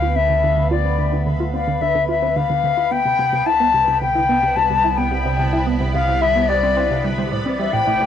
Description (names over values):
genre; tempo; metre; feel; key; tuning
ambient, sequencer-driven space music; 109 BPM; 4/4; straight; unclear; A4 = 440 Hz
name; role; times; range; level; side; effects
silver concert flute; melody; 0.0-8.1 s; D5 to A5; -18 LUFS; left 5 dB; cassette tape, ping-pong delay
phased string machine; sustained chords; 0.0-8.1 s; C3 to D5; -29 LUFS; right 2 dB; ensemble chorus, phaser
tight sequenced synth; riff; 0.0-8.1 s; A2 to G4; -24 LUFS; right 2 dB; chorus, ping-pong delay
analog drone; bass; 0.0-8.1 s; A1 to D2; -24 LUFS; right 2 dB; chorus, transformer saturation
bubbling stepped-filter texture; texture; 0.0-8.1 s; B3 to B5; -29 LUFS; right 2 dB; chorus, built-in reverb
room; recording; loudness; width
wet booth ambience, RT60 0.2 s; home recording on cassette; -16 LUFS; side -9 dB against mid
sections
0.0-8.1 A section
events
fade-in on string machine 0.0-8.1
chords
0.0 Dm; 2.9 Cadd9; 7.3 Am7